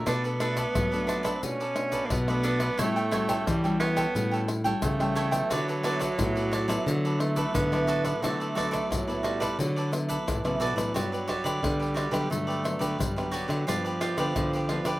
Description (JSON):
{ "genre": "samba and choro", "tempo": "88 BPM", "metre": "4/4", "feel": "straight", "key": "D major, G major from 11.0 s", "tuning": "A4 = 440 Hz", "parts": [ { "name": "cavaquinho", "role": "accompaniment", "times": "0.0-15.0 s", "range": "D4 to G5", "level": "-31 LUFS", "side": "right 2 dB", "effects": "slapback echo" }, { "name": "nylon-string guitar", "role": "accompaniment", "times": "0.0-15.0 s", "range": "G2 to F#4", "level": "-33 LUFS", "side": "left 1 dB", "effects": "slapback echo" }, { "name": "nylon-string guitar", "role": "bass", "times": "0.0-15.0 s", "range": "G2 to F#3", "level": "-30 LUFS", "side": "equal", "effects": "none" }, { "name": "breathy tenor saxophone", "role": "second line", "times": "0.1-15.0 s", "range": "E3 to C#4", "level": "-31 LUFS", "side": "right 2 dB", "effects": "slapback echo" }, { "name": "egg shaker, surdo, pandeiro and tamborim", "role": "percussion", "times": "0.1-15.0 s", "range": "none", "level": "-33 LUFS", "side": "left 1 dB", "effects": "none" } ], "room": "little or no reverb", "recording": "recorded outdoors, with no room sound", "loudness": "-25 LUFS", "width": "side -17 dB against mid", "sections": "0.0-11.0 A section; 11.0-15.0 B section", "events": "none", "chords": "0.1 Bm7; 2.8 A13; 5.5 D69; 11.0 Gmaj7; 13.7 G7" }